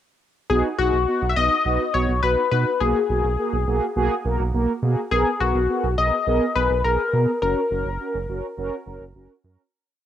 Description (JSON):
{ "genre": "synth-pop", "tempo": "104 BPM", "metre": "4/4", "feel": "straight", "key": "B major", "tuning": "A4 = 441 Hz", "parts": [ { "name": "funky polysynth comp", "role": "melody", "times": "0.5-9.1 s", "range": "F#4 to E5", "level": "-22 LUFS", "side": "left 5 dB", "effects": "chorus, cassette tape" }, { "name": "mellow synth brass", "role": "accompaniment", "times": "0.5-9.6 s", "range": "A#3 to A#4", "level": "-25 LUFS", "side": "right 2 dB", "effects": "chorus" }, { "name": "round analog bass", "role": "bass", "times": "0.5-9.6 s", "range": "F#1 to B2", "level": "-24 LUFS", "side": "right 2 dB", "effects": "none" } ], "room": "moderate spring reverb, RT60 1.3 s", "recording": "home recording on cassette", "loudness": "-19 LUFS", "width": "side -10 dB against mid", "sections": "0.5-9.7 verse", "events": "fade-out 7.4-9.7", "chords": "0.5 B; 2.8 F#add9/B; 5.1 G#madd9/B; 7.4 F#" }